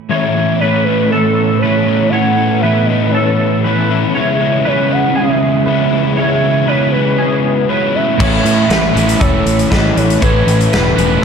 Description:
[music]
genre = rock, shoegaze and dream pop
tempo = 119 BPM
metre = 4/4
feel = straight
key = A major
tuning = A4 = 440 Hz
[part]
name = pure breathy sine lead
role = melody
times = 0.1-11.2 s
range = A4 to F#5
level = -18 LUFS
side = right 1 dB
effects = chorus, tape echo
[part]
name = string machine, cellos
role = sustained chords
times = 0.1-11.2 s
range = E3 to B5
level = -23 LUFS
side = left 1 dB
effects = phaser, ensemble chorus
[part]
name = twangy electric guitar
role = arpeggios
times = 0.1-11.2 s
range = G#4 to C#5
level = -21 LUFS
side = equal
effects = analog chorus, tape echo
[part]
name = crunchy overdriven guitar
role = riff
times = 0.1-11.2 s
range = A2 to E4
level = -17 LUFS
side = left 8 dB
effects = analog chorus
[part]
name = crunchy overdriven guitar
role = riff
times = 0.1-11.2 s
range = A2 to E4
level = -17 LUFS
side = right 8 dB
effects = reverse reverb
[part]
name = growling fingered electric bass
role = bass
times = 8.2-11.2 s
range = E1 to A2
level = -16 LUFS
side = equal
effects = overdrive
[part]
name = big rock drum kit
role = drums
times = 8.2-11.1 s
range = crash cymbal, hi-hat, kick drum, snare drum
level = -16 LUFS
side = left 1 dB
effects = none
[sound]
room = moderate concert hall reverb, RT60 2.2 s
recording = none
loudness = -11 LUFS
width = side -6 dB against mid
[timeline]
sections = 0.1-8.2 A section; 8.2-11.2 B section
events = none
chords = 0.1 Aadd9; 4.2 C#m7; 8.2 Aadd9

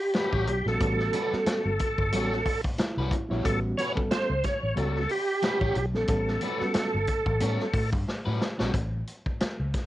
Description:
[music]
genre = funk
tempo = 91 BPM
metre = 4/4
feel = swing 56% on 16ths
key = A mixolydian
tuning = A4 = 441 Hz
[part]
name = bright tonewheel organ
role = melody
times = 0.0-7.9 s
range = G4 to C#5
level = -28 LUFS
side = right 1 dB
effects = chorus vibrato, slow rotary speaker, cassette tape
[part]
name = vintage drum kit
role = drums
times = 0.1-9.9 s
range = hi-hat, kick drum, snare drum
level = -30 LUFS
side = equal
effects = none
[part]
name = crunchy overdriven guitar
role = accompaniment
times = 0.2-8.7 s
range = G3 to C#5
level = -33 LUFS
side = left 3 dB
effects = cassette tape
[part]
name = vintage muted fingered electric bass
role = bass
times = 0.3-9.7 s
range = G1 to A2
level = -30 LUFS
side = equal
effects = none
[part]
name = reed electric piano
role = stabs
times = 0.5-8.7 s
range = G3 to A4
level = -32 LUFS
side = right 1 dB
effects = overdrive, fast tremolo, cassette tape
[sound]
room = little or no reverb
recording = home recording on cassette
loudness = -25 LUFS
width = side -15 dB against mid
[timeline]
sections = 0.0-8.7 A section; 8.7-9.9 B section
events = reed electric piano fill 2.5-3.4; drum fill 8.1-8.7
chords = 0.0 A13; 8.7 A

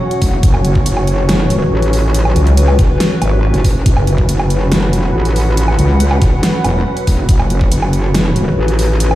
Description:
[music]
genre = heavy wobble dubstep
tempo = 140 BPM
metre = 4/4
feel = half-time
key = F# minor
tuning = A4 = 440 Hz
[part]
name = supersaw pad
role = sustained chords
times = 0.0-9.2 s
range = F#3 to C#5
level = -20 LUFS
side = right 1 dB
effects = sidechain pumping, low-pass filter
[part]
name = warbly tape-like pad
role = texture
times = 0.0-9.2 s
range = F#4 to F#5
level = -23 LUFS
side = left 2 dB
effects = chorus, built-in reverb, phaser, sidechain pumping
[part]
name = dubstep drum kit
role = drums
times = 0.1-9.2 s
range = hi-hat, snare drum, woodblock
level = -19 LUFS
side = right 1 dB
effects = overdrive
[part]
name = metallic wobble bass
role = bass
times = 0.2-9.2 s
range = E1 to A1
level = -14 LUFS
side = equal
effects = distortion, chorus, overdrive
[part]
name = electronic kick drum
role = drums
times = 0.2-7.7 s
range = none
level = -12 LUFS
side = equal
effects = overdrive
[part]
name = wobble bass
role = bass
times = 0.4-7.7 s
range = E1 to C#2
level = -12 LUFS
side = equal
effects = chorus, overdrive
[sound]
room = little or no reverb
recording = played on a big sound system in a bare room, stone room reverb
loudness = -11 LUFS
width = side -15 dB against mid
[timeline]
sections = 0.0-9.2 A section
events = none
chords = 0.0 F#5

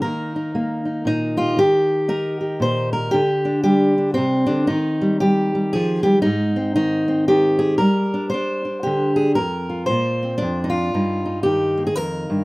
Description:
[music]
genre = folk, solo fingerstyle acoustic guitar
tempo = 115 BPM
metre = 3/4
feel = swing 60% on 8ths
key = unclear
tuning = A4 = 439 Hz
[part]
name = fingerpicked steel-string acoustic guitar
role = solo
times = 0.0-12.4 s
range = F2 to C5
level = -17 LUFS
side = equal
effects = none
[sound]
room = moderate studio reverb, RT60 0.5 s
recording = rough home demo mix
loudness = -17 LUFS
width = side -23 dB against mid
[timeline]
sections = 0.0-1.6 A section; 1.6-12.4 B section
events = none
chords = 0.0 Eb5; 1.6 Eb; 3.1 G5/D; 4.7 Eb; 6.3 Ab; 7.8 Gm; 9.4 Bbadd9/F; 10.9 Eb/G

